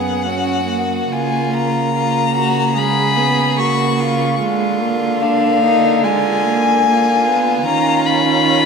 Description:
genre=classical, slow romantic movement for string quartet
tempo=73 BPM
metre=4/4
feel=rubato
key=unclear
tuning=A4 = 440 Hz
part: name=dark violin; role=melody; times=0.0-8.7 s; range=E#5 to C#6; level=-17 LUFS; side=left 6 dB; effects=none
part: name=warm violin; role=second line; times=0.0-8.7 s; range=D4 to G#4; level=-21 LUFS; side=left 1 dB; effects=none
part: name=dark viola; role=accompaniment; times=0.0-8.7 s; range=G#3 to C#4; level=-20 LUFS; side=right 3 dB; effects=none
part: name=warm cello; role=bass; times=0.0-8.7 s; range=F#2 to D#3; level=-21 LUFS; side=right 8 dB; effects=none
room=wet cathedral reverb, RT60 5.1 s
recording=in a vast, echoing space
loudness=-13 LUFS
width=side -5 dB against mid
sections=0.0-8.7 A section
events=none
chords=0.0 F#; 1.1 C#7; 4.4 A#7/D; 7.7 D#7(no3)

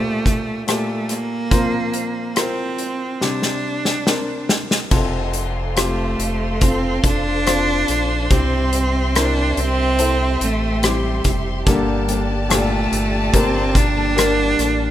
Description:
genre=pop ballad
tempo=71 BPM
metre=4/4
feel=straight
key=F major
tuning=A4 = 440 Hz
part: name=clear cello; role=melody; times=0.0-14.9 s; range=G3 to D4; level=-21 LUFS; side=right 2 dB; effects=none
part: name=warm baby grand piano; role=accompaniment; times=0.0-14.9 s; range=G2 to C5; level=-24 LUFS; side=left 2 dB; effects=none
part: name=loose indie drum kit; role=drums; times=0.3-14.8 s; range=crash cymbal, hi-hat, kick drum, rim click, snare drum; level=-20 LUFS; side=equal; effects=none
part: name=warm symphonic string section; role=sustained chords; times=4.9-14.9 s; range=G4 to C6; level=-26 LUFS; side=left 1 dB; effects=none
part: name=sub bass with octave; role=bass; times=4.9-14.9 s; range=F1 to C2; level=-23 LUFS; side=equal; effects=none
part: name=fingerpicked steel-string acoustic guitar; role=arpeggios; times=11.7-14.9 s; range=G2 to A4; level=-27 LUFS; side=left 2 dB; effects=none
room=light reverb, small room reverb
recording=rough home demo mix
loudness=-16 LUFS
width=side -12 dB against mid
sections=0.0-4.9 A section; 4.9-14.9 B section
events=drum fill 3.2-4.9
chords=0.0 Gmadd9; 1.5 Bbsus2; 3.2 Csus2; 4.9 F; 8.3 C; 11.7 Gmadd9

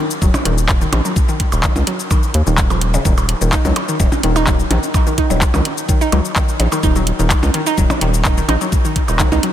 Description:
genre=minimal techno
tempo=127 BPM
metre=4/4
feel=straight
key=Eb minor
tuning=A4 = 440 Hz
part: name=garage drum kit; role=drums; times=0.1-9.5 s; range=handclaps, hi-hat, shaker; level=-21 LUFS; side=left 1 dB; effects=none
part: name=hollow square pluck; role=riff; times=0.2-9.5 s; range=Db3 to Eb4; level=-20 LUFS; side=equal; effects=chorus, phaser, sidechain pumping, diffuse ambient delay
part: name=rubbery square bass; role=bass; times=0.2-9.4 s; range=Eb1 to Eb2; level=-17 LUFS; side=equal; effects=sidechain pumping
part: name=electronic kick drum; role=drums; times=0.2-9.3 s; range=none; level=-16 LUFS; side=equal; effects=none
part: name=percussion blips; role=percussion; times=0.3-9.4 s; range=none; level=-24 LUFS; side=right 2 dB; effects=tape echo
room=light reverb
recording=none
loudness=-13 LUFS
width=side -11 dB against mid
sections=0.0-9.5 A section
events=none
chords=none

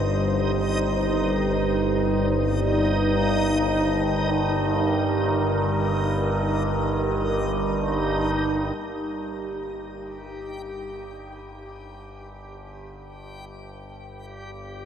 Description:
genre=dark ambient drone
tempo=free time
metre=none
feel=none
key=unclear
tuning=A4 = 440 Hz
part: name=deep dark ambient pad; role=sustained chords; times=0.0-8.8 s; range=G3 to C5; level=-27 LUFS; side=right 2 dB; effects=chorus, built-in reverb, shimmer reverb
part: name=overtone-sweeping drone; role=drone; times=0.0-14.9 s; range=G1 to G2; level=-26 LUFS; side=equal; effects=chorus, built-in reverb
part: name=backwards swelling texture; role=texture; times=0.0-14.9 s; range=Eb4 to G4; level=-29 LUFS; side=right 1 dB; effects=built-in reverb, shimmer reverb
room=wet huge ambient reverb, RT60 8.2 s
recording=none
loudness=-21 LUFS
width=side -8 dB against mid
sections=0.0-8.8 A section; 8.8-14.9 B section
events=none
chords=0.0 Eb/G; 8.8 N.C.

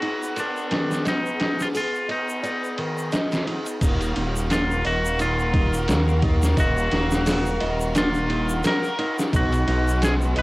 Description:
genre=trip hop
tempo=87 BPM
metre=4/4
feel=swing 56% on 16ths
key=Eb harmonic minor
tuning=A4 = 445 Hz
part: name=twangy electric guitar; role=melody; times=0.0-10.4 s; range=D4 to B4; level=-27 LUFS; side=equal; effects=cassette tape, dub echo
part: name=clear studio violin section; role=sustained chords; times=0.0-10.4 s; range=G#3 to F5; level=-30 LUFS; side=equal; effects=vintage 12-bit sampler grit, cassette tape
part: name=nylon-string guitar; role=arpeggios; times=0.0-10.4 s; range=D#3 to D#5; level=-30 LUFS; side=equal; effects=cassette tape, tape echo
part: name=trip hop sampler-style drum kit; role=drums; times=0.0-10.4 s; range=crash cymbal, hi-hat, kick drum, ride cymbal, snare drum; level=-25 LUFS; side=equal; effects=overdrive, low-pass filter on cymbals, low-pass filter on snare, low-pass filter on hats, low-pass filter on kick, low-pass filter on room
part: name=egg shaker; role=percussion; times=0.2-10.3 s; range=none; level=-40 LUFS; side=equal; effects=none
part: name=dark detuned saw bass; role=bass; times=3.8-10.4 s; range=Eb1 to Eb2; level=-23 LUFS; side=equal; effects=none
room=light reverb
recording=home recording on cassette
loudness=-20 LUFS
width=side -20 dB against mid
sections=0.0-3.8 A section; 3.8-10.4 B section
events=none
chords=0.0 B6; 3.8 Ebmadd9; 9.3 B6

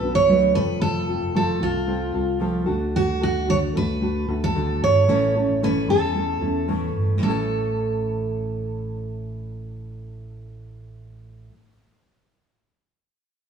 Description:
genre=acoustic pop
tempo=113 BPM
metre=4/4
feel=straight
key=unclear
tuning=A4 = 442 Hz
part: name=picked steel-string acoustic guitar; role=melody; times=0.0-11.5 s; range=F4 to C#5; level=-22 LUFS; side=right 2 dB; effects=none
part: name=nylon-string guitar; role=accompaniment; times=0.0-11.6 s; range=A2 to B4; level=-25 LUFS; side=equal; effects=none
part: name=fingered electric bass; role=bass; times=0.0-11.5 s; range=F1 to E2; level=-27 LUFS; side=right 1 dB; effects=none
room=wet stone room reverb, RT60 1.3 s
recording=band playing live in one room, studio ambience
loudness=-20 LUFS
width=side -7 dB against mid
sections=0.0-7.2 A section; 7.2-11.5 B section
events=none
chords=0.0 Bm; 0.6 F; 2.7 D; 5.1 A

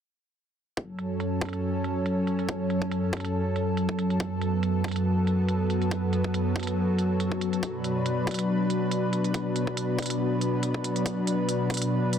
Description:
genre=heavy wobble dubstep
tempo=140 BPM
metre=4/4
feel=swing 54% on 16ths, half-time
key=F# minor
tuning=A4 = 440 Hz
part: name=lush unison pad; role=sustained chords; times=0.8-12.2 s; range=F#2 to B4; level=-25 LUFS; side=equal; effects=chorus, sidechain pumping
part: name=electronic hi-hat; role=drums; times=0.8-12.2 s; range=none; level=-36 LUFS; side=right 4 dB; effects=low-pass filter on hats
part: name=electronic kick drum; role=drums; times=0.8-11.8 s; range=none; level=-33 LUFS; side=equal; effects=high-pass filter on kick
room=moderate digital room reverb, RT60 1.1 s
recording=dense, heavily limited modern master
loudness=-25 LUFS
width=side -8 dB against mid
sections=0.8-12.2 A section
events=filter sweep on drum 0.8-12.2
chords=0.8 F#m; 7.6 Bm

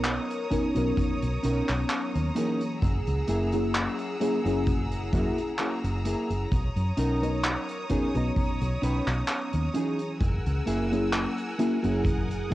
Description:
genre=vaporwave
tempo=65 BPM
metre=4/4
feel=swing 54% on 16ths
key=B major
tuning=A4 = 440 Hz
part: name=mellow FM electric piano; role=accompaniment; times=0.0-12.5 s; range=E3 to A#5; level=-29 LUFS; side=left 1 dB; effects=phaser, wide subtle chorus, analog delay
part: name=bright studio string section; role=sustained chords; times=0.0-12.5 s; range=G#4 to E6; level=-36 LUFS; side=equal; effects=vintage 12-bit sampler grit
part: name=fingered electric bass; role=bass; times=0.0-12.5 s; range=F#1 to F#2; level=-29 LUFS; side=equal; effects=none
part: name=street-band drum kit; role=drums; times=0.0-12.5 s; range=handclaps, hi-hat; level=-32 LUFS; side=equal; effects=cassette tape
part: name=mellow electric guitar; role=riff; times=0.5-12.5 s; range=A#3 to C#5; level=-31 LUFS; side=right 1 dB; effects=wide subtle chorus
part: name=kick drum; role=drums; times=0.5-12.3 s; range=none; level=-29 LUFS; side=equal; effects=cassette tape
room=light reverb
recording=home recording on cassette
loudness=-25 LUFS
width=side -15 dB against mid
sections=0.0-12.5 A section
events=none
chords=0.0 Bmaj9; 2.8 F#9; 6.5 Bmaj9; 10.2 F#9

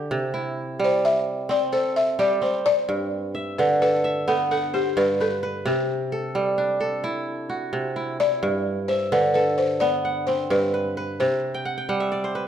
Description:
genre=west african traditional, West African string and xylophone music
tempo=87 BPM (dotted quarters)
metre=12/8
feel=straight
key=G major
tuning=A4 = 441 Hz
part: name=balafon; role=melody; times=0.0-12.5 s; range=G4 to E5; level=-22 LUFS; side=left 2 dB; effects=none
part: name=kora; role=arpeggios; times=0.0-12.5 s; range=G2 to G5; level=-24 LUFS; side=right 2 dB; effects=none
room=wet recital hall reverb, RT60 1.4 s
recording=none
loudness=-21 LUFS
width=side -9 dB against mid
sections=0.0-2.9 A section; 2.9-12.5 B section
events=balafon solo 0.0-2.9; kora fill 11.5-12.5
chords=0.1 C; 2.9 G; 5.7 C; 8.4 G; 11.2 C

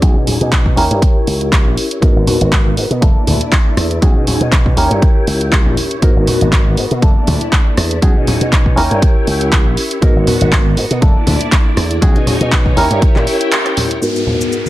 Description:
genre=filtered disco house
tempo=120 BPM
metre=4/4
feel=swing 55% on 16ths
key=G# minor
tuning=A4 = 440 Hz
part: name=barky reed electric piano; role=accompaniment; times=0.0-14.7 s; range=G#2 to A#4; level=-18 LUFS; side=equal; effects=overdrive, fast tremolo, phaser, sidechain pumping, low-pass filter
part: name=phased string machine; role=sustained chords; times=0.0-14.7 s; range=B3 to G#5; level=-23 LUFS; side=left 1 dB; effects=ensemble chorus, phaser, sidechain pumping, low-pass filter
part: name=slap bass with an envelope filter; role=bass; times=0.0-13.3 s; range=F#1 to B2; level=-16 LUFS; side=equal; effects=sidechain pumping, low-pass filter
part: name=electronic kick drum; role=drums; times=0.0-13.1 s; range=none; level=-12 LUFS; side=equal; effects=overdrive
part: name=house drum kit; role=drums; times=0.0-14.7 s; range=handclaps, hi-hat, rim click, shaker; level=-19 LUFS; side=right 1 dB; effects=overdrive, sidechain pumping on hats, sidechain pumping on cymbals, sidechain pumping on perc
part: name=tambourine and congas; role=percussion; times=0.0-14.7 s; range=none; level=-21 LUFS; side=left 1 dB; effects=sidechain pumping on perc, low-pass filter on perc
part: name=downlifter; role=sound effects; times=14.0-14.7 s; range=none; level=-24 LUFS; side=equal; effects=none
room=digital ambience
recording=none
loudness=-10 LUFS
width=side -16 dB against mid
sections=0.0-14.0 A section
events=filter sweep 0.0-14.0; break 13.5-14.0; band accent 13.5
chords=0.0 B69; 0.8 D#7b9 (rootless); 2.0 G#m9; 3.0 F#7#9b13 (rootless); 4.0 B69; 4.8 D#7b9 (rootless); 6.0 G#m9; 7.0 F#7#9b13 (rootless); 8.0 B69; 8.8 D#7b9 (rootless); 10.0 G#m9; 11.0 F#7#9b13 (rootless); 12.0 B69; 12.8 D#7b9 (rootless); 14.0 G#m9

